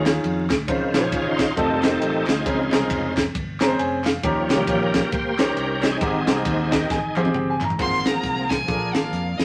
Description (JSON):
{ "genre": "uptempo gospel", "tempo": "135 BPM", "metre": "4/4", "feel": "swing 60% on 8ths", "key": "Ab major", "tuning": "A4 = 442 Hz", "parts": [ { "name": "warm concert grand piano", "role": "accompaniment", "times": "0.0-9.4 s", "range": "Ab2 to Bb5", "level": "-27 LUFS", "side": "equal", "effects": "none" }, { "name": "bright tonewheel organ", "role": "sustained chords", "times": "0.0-9.4 s", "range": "Db3 to C5", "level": "-28 LUFS", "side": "equal", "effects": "fast rotary speaker, overdrive, chorus vibrato" }, { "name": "fingered electric bass", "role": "bass", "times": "0.0-9.4 s", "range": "F1 to F2", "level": "-32 LUFS", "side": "equal", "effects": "none" }, { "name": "crisp fusion drum kit", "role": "drums", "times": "0.1-9.4 s", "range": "crash cymbal, hi-hat, kick drum, ride cymbal, snare drum, toms", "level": "-26 LUFS", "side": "equal", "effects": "none" }, { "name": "group handclap", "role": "percussion", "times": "0.1-7.7 s", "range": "none", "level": "-36 LUFS", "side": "equal", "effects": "none" }, { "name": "clear violin", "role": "melody", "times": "7.8-9.4 s", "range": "Eb5 to C6", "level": "-28 LUFS", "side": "equal", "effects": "none" } ], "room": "moderate studio reverb, RT60 0.6 s", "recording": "vinyl crackle", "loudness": "-22 LUFS", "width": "mono", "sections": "0.0-7.8 A section; 7.8-9.4 B section", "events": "tonewheel organ solo 0.0-7.8; grand piano fill 3.3-4.2, 6.5-7.8; drum fill 6.9-7.8", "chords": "0.0 Eb9sus4; 0.7 Dbmaj9; 1.6 F7; 2.5 Bbm9; 4.2 Eb7; 6.0 Abmaj9; 7.8 Ab69; 8.7 Bb7", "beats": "0.24 | 0.68 1.12 1.57 2.01 | 2.46 2.90 3.35 3.79 | 4.23 4.68 5.12 5.57 | 6.01 6.45 6.90 7.34 | 7.79 8.23 8.68 9.13" }